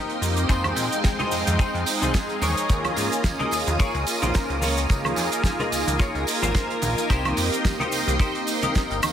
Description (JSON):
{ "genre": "nu-disco, nu disco", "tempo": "109 BPM", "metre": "4/4", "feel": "swing 56% on 16ths", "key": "F minor", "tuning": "A4 = 439 Hz", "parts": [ { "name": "warm analog pad", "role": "accompaniment", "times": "0.0-9.1 s", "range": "Ab3 to G5", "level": "-27 LUFS", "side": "equal", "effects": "chorus, dub echo" }, { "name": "string machine, full ensemble", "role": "sustained chords", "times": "0.0-9.1 s", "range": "Ab3 to Eb6", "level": "-30 LUFS", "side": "equal", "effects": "phaser, ensemble chorus, sidechain pumping" }, { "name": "clean electric guitar", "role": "riff", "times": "0.0-9.0 s", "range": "Eb4 to Eb5", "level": "-30 LUFS", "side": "left 2 dB", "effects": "ensemble chorus, dub echo" }, { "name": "damped 70s drum kit", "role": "drums", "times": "0.1-9.1 s", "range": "cabasa, hi-hat, snare drum, woodblock", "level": "-29 LUFS", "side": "right 3 dB", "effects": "studio reverb" }, { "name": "chorused synth bass", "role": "bass", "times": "0.2-9.0 s", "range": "G1 to Bb2", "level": "-27 LUFS", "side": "equal", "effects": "tube saturation, sidechain pumping" }, { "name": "kick drum", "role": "drums", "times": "0.5-8.9 s", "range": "none", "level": "-22 LUFS", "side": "equal", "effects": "studio reverb" }, { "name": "tambourine and congas", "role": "percussion", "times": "0.5-9.1 s", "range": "none", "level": "-33 LUFS", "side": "right 2 dB", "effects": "none" } ], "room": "light reverb, small room ambience", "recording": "none", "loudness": "-20 LUFS", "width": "side -9 dB against mid", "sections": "0.0-9.1 A section", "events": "none", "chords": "0.5 Fm7; 2.4 Eb7sus4; 4.6 Db6; 7.1 Cm7" }